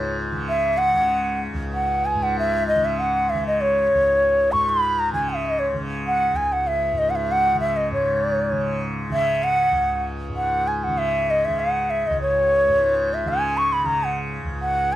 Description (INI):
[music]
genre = indian classical, Hindustani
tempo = 98 BPM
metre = 7/4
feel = straight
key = C# raga bhimpalasi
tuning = A4 = 441 Hz
[part]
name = breathy bright bansuri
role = melody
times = 0.0-15.0 s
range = C#5 to C#6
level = -19 LUFS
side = equal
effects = none
[part]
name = tanpura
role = drone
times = 0.0-15.0 s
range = C#2 to C#3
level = -26 LUFS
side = equal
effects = none
[sound]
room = light reverb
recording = dark, warm production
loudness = -19 LUFS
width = side -13 dB against mid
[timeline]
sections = 0.0-7.9 A section; 7.9-15.0 B section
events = none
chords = none